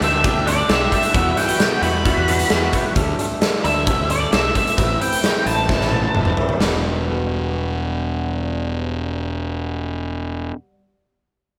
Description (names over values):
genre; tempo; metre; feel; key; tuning
indie rock; 132 BPM; 4/4; straight; E minor; A4 = 440 Hz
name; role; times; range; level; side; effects
octave-fuzz lead guitar; melody; 0.0-6.3 s; D5 to B5; -24 LUFS; equal; distortion
electric guitar through a small old amp; riff; 0.0-10.6 s; G3 to B4; -27 LUFS; equal; analog chorus, slapback echo
twelve-string electric guitar; riff; 0.0-2.9 s; E2 to G4; -28 LUFS; equal; ensemble chorus, slapback echo
fuzz fingered electric bass; bass; 0.0-10.5 s; E1 to E2; -26 LUFS; equal; overdrive
big rock drum kit; drums; 0.0-6.7 s; hi-hat, kick drum, snare drum, toms; -22 LUFS; equal; none
room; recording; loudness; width
moderate lush hall reverb, RT60 1.5 s, studio reverb; big arena sound; -19 LUFS; mono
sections
0.0-6.6 A section; 6.6-10.2 B section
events
lead electric guitar solo 0.0-6.6; drum fill 5.7-6.6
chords
0.0 Dsus4; 1.1 Emadd9; 3.0 Dsus4; 4.8 Amadd9; 6.6 Emadd9